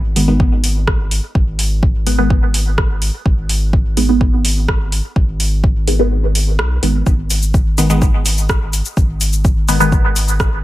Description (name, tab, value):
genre	dub techno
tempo	126 BPM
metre	4/4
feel	straight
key	G# minor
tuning	A4 = 440 Hz
part	round analog bass	bass	0.0-10.6 s	G#1 to B1	-17 LUFS	equal	sidechain pumping
part	filtered dub chord stab	stabs	0.2-10.1 s	D#3 to B3	-17 LUFS	right 1 dB	phaser, sidechain pumping, dub echo
part	deep house drum kit	drums	0.2-10.5 s	cabasa, hi-hat, rim click	-21 LUFS	equal	none
part	electronic kick drum	drums	0.4-10.5 s	none	-15 LUFS	equal	none
room	light reverb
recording	none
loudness	-13 LUFS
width	side -15 dB against mid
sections	0.0-7.1 A section; 7.1-10.6 A section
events	filter sweep on synth stab 0.0-7.1; kick drops out 6.1-7.1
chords	0.0 G#m